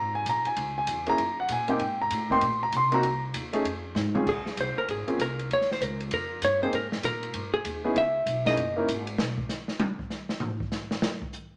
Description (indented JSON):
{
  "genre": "jazz, small-group swing and bop",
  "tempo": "195 BPM",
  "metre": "4/4",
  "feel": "swing 63% on 8ths",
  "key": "Bb minor",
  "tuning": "A4 = 440 Hz",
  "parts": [
    { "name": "warm grand piano", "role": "accompaniment", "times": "0.0-8.9 s", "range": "Bb2 to C6", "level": "-28 LUFS", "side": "equal", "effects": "none" },
    { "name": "upright bass", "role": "bass", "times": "0.0-9.4 s", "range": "Gb1 to C3", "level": "-37 LUFS", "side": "equal", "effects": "none" },
    { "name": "open jazz drum kit", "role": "drums", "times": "0.3-11.4 s", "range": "crash cymbal, hi-hat, kick drum, ride cymbal, snare drum, toms", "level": "-36 LUFS", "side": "equal", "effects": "none" },
    { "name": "vintage hollow-body jazz guitar", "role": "melody", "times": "4.3-8.7 s", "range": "Ab4 to Fb5", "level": "-30 LUFS", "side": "equal", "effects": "none" }
  ],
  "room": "wet studio reverb, RT60 0.8 s",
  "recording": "none",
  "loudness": "-28 LUFS",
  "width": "mono",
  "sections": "0.0-4.3 A section; 4.3-11.6 A section",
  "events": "drum fill 4.0-4.3; hollow-body jazz guitar solo 4.3-11.6; drum solo 9.2-11.6",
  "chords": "0.0 N.C.; 0.6 Dbm; 1.2 Gb; 1.8 Abmaj9; 3.0 Cm7; 3.6 Fm; 4.3 Bbm9; 5.5 Eb7; 6.7 Absus2; 8.0 Dbm7; 8.6 Gb13; 9.2 N.C.",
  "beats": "0.25 | 0.56 0.87 1.18 1.49 | 1.80 2.10 2.41 2.72 | 3.03 3.34 3.65 3.96 | 4.26 4.57 4.88 5.19 | 5.50 5.80 6.11 6.42 | 6.73 7.04 7.34 7.65 | 7.96 8.26 8.57 8.88 | 9.19 9.49 9.80 10.11 | 10.41 10.72 11.03 11.33"
}